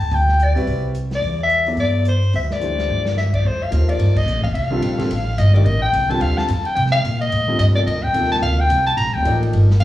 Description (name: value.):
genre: modal jazz.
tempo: 217 BPM.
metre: 4/4.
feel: swing 61% on 8ths.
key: F mixolydian from 3.4 s.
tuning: A4 = 441 Hz.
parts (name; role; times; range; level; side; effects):
growling soprano saxophone; melody; 0.0-9.8 s; C5 to Bb5; -20 LUFS; left 2 dB; slapback echo.
upright bass; bass; 0.0-9.8 s; D1 to C3; -18 LUFS; equal; none.
swinging big-band drum kit; drums; 0.0-9.8 s; crash cymbal, hi-hat, kick drum, ride cymbal, snare drum; -30 LUFS; equal; none.
warm concert grand piano; accompaniment; 0.6-9.7 s; C3 to E5; -24 LUFS; equal; slapback echo.
room: light reverb, small room reverb.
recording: live gig heard through the venue's PA, club reverb.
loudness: -16 LUFS.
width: side -14 dB against mid.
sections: 0.0-3.4 A section; 3.4-9.8 B section.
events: drum fill 2.9; band accent 4.1.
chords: 0.0 Cadd9; 3.4 F9; 7.9 Gm.